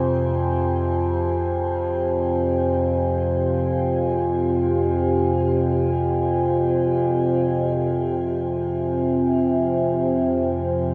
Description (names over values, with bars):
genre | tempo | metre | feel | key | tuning
dark ambient drone | free time | none | none | F minor | A4 = 440 Hz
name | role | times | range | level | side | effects
dark analog pad | sustained chords | 0.0-10.9 s | F4 to Ab5 | -25 LUFS | equal | lush chorus, shimmer reverb
overtone-sweeping drone | drone | 0.0-10.9 s | F2 to C3 | -25 LUFS | equal | chorus, built-in reverb
bronze singing bowl | texture | 0.0-7.5 s | none | barely audible | none | none
room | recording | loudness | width
moderate plate reverb, RT60 3.1 s | cassette tape | -22 LUFS | mono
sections
0.0-7.5 A section; 7.5-10.9 B section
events
none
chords
0.0 Fmadd9